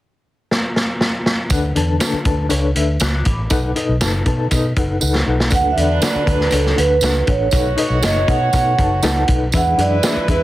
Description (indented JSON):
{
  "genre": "uptempo 1960s-style soul",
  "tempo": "120 BPM",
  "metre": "4/4",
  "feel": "straight",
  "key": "D major",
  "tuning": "A4 = 440 Hz",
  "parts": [
    { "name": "vintage drum kit", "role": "drums", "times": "0.5-10.4 s", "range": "hi-hat, kick drum, snare drum", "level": "-19 LUFS", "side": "equal", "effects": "none" },
    { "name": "reed electric piano", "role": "accompaniment", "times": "1.5-10.4 s", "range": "B2 to F#6", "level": "-22 LUFS", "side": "left 4 dB", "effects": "fast tremolo" },
    { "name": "vintage muted fingered electric bass", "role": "bass", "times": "1.5-10.4 s", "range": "F#1 to B2", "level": "-19 LUFS", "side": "equal", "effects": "none" },
    { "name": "tambourine", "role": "percussion", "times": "1.5-10.2 s", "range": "none", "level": "-26 LUFS", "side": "right 5 dB", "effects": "none" },
    { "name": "vibraphone with soft mallets", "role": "melody", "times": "5.5-10.4 s", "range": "A4 to F#5", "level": "-18 LUFS", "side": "right 4 dB", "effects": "slapback echo" },
    { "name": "warm horn section", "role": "second line", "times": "5.5-10.4 s", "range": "F#3 to C#5", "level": "-25 LUFS", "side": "right 2 dB", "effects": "none" }
  ],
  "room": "light reverb",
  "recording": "heavily compressed radio sound, multiband compression",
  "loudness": "-14 LUFS",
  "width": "side -15 dB against mid",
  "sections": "0.0-1.5 A section; 1.5-5.5 B section; 5.5-10.4 C section",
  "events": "drum fill 0.5-1.5, 5.0-5.5",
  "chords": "0.0 N.C.; 1.5 D6; 3.5 B7; 5.5 D6; 7.5 B7; 9.5 E7"
}